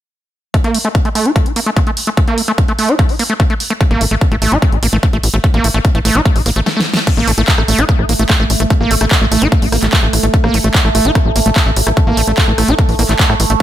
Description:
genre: psychedelic trance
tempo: 147 BPM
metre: 4/4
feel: straight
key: unclear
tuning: A4 = 440 Hz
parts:
  - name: screaming distorted acid line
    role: riff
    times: 0.5-13.6 s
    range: A3 to E4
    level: -17 LUFS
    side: equal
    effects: distortion, chorus, auto-pan, cassette tape, sidechain pumping, ping-pong delay
  - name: big-room dance drum kit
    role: drums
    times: 0.5-13.6 s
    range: crash cymbal, handclaps, hi-hat, rim click, snare drum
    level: -18 LUFS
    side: equal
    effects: small room reverb
  - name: electronic kick drum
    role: drums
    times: 0.5-13.6 s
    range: none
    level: -13 LUFS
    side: equal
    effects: small room reverb
  - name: tight sequencer bass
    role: bass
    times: 3.9-13.6 s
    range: A1 to A2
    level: -15 LUFS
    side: equal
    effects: none
  - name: overtone-sweeping drone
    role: sustained chords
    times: 7.5-13.6 s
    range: A3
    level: -20 LUFS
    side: right 3 dB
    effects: chorus, built-in reverb, phaser, sidechain pumping
room: little or no reverb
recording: none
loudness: -11 LUFS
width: side -12 dB against mid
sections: 0.5-7.1 A section; 7.1-13.6 B section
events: filter sweep on acid bass 0.5-7.1; drum fill 6.7-7.1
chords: 0.5 A5

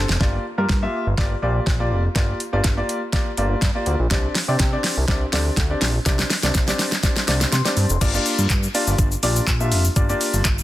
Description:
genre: dance-pop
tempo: 123 BPM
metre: 4/4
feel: straight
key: G minor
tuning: A4 = 440 Hz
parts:
  - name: clear concert grand piano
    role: accompaniment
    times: 0.0-10.5 s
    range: Bb3 to C6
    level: -24 LUFS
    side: left 1 dB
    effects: sidechain pumping
  - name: fat analog bass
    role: bass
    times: 0.0-10.6 s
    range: F1 to C3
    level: -22 LUFS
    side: equal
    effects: sidechain pumping
  - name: smooth R&B drum kit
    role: drums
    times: 0.1-10.6 s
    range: crash cymbal, handclaps, hi-hat, kick drum, shaker, snare drum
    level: -20 LUFS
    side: equal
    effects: none
room: digital ambience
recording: dense, heavily limited modern master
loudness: -18 LUFS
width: side -15 dB against mid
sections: 0.2-8.0 A section; 8.0-10.6 B section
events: drum fill 0.0, 0.2-8.0; build-up 0.2-8.0; grand piano fill 7.3-8.0; drop 8.0-10.6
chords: 0.2 Gm7; 4.1 Csus2; 8.0 Gm7

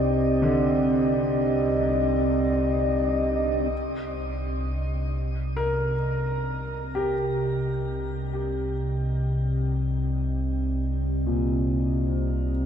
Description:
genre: dark ambient drone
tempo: free time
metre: none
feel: none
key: C minor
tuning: A4 = 442 Hz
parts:
  - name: dark analog pad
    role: sustained chords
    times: 0.0-12.7 s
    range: C4 to Eb5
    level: -27 LUFS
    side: right 1 dB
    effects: wide subtle chorus, shimmer reverb
  - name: warm grand piano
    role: arpeggios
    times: 0.0-12.7 s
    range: Bb2 to Bb4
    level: -31 LUFS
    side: left 1 dB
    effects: analog delay, shimmer reverb
  - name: analog drone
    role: drone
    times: 0.0-12.7 s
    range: C2 to C3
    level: -26 LUFS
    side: equal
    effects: chorus
room: wet huge ambient reverb, RT60 8.5 s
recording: dreamy mix soaked in reverb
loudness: -23 LUFS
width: side -8 dB against mid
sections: 0.0-3.7 A section; 3.7-12.7 B section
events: fade-in on analog synth pad 3.7-12.7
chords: 0.0 Cmadd9

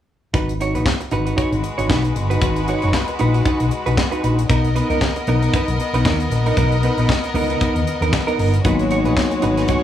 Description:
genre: disco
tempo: 116 BPM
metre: 4/4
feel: swing 56% on 16ths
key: unclear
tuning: A4 = 440 Hz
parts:
  - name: clean electric guitar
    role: accompaniment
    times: 0.3-9.8 s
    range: B3 to C#5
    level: -22 LUFS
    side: right 4 dB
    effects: harmonic tremolo
  - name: fingered electric bass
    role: bass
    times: 0.3-9.6 s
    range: F#1 to D#2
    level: -20 LUFS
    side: left 1 dB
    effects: none
  - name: tight funk drum kit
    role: drums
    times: 0.3-9.8 s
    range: handclaps, hi-hat, kick drum, snare drum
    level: -21 LUFS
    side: left 1 dB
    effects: none
  - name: clear studio violin section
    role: second line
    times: 1.4-9.8 s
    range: G#3 to D#5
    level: -24 LUFS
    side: left 3 dB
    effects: none
  - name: mellow tine electric piano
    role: accompaniment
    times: 8.6-9.8 s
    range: F#3 to D#4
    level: -20 LUFS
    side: left 5 dB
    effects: lush chorus
room: small room ambience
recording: studio ambience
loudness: -16 LUFS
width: side -11 dB against mid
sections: 0.3-9.8 A section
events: none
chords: 0.3 G#m7; 4.5 Bmaj7; 8.7 G#m7

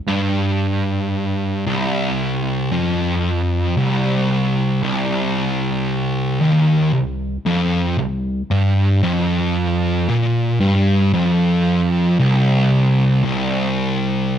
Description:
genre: metal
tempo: 57 BPM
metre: 4/4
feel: straight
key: C minor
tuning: A4 = 440 Hz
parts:
  - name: fuzz guitar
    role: solo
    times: 0.1-14.4 s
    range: C2 to Bb2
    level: -16 LUFS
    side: equal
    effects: distortion
room: moderate large studio reverb, RT60 1.2 s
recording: none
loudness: -16 LUFS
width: side -9 dB against mid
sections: 0.0-13.2 A section; 13.2-14.4 B section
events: none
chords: none

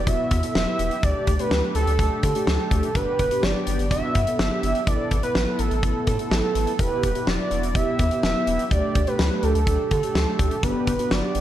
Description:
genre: synth-pop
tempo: 125 BPM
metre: 4/4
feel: straight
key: unclear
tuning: A4 = 436 Hz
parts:
  - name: fat analog lead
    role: melody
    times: 0.0-11.4 s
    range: A4 to E5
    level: -25 LUFS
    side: right 2 dB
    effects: slapback echo
  - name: round analog bass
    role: bass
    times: 0.0-11.4 s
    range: E1 to D3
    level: -25 LUFS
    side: equal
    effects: none
  - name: mellow synth brass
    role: accompaniment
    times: 0.1-11.4 s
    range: A3 to B4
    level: -28 LUFS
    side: right 1 dB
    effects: chorus
  - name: huge arena drum kit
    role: drums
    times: 0.1-11.4 s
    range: hi-hat, kick drum, snare drum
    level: -24 LUFS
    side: equal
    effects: none
room: moderate recital hall reverb, RT60 1.4 s, small room ambience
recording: dark, warm production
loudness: -20 LUFS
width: side -12 dB against mid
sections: 0.0-11.4 A section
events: none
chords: 0.0 Em; 1.0 Dsus4; 3.0 G; 4.9 Asus2; 6.8 Em7; 8.7 Dsus4; 10.6 G

